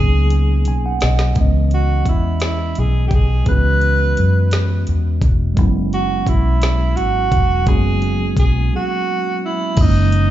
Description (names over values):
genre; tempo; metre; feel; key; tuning
slow six-eight R&B; 57 BPM (dotted quarters); 6/8; straight; unclear; A4 = 440 Hz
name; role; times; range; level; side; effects
warm tenor saxophone; melody; 0.0-10.3 s; D#4 to B4; -21 LUFS; right 3 dB; slapback echo
mellow tine electric piano; accompaniment; 0.0-10.3 s; D#3 to G#5; -22 LUFS; right 4 dB; fast stereo tremolo
vintage muted fingered electric bass; bass; 0.0-10.3 s; E1 to F#2; -16 LUFS; equal; none
smooth R&B drum kit; drums; 0.3-10.3 s; crash cymbal, hi-hat, kick drum, snare drum; -18 LUFS; equal; none
room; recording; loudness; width
little or no reverb; live gig heard through the venue's PA, club reverb, nothing above 7.6 kHz; -14 LUFS; side -13 dB against mid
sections
0.0-1.4 A section; 1.4-9.8 B section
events
drum fill 0.3-1.4; tine electric piano fill 0.3-1.4; break 8.7-9.8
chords
0.0 G#m11; 1.4 C#m9; 5.6 F#9sus4; 9.8 F#13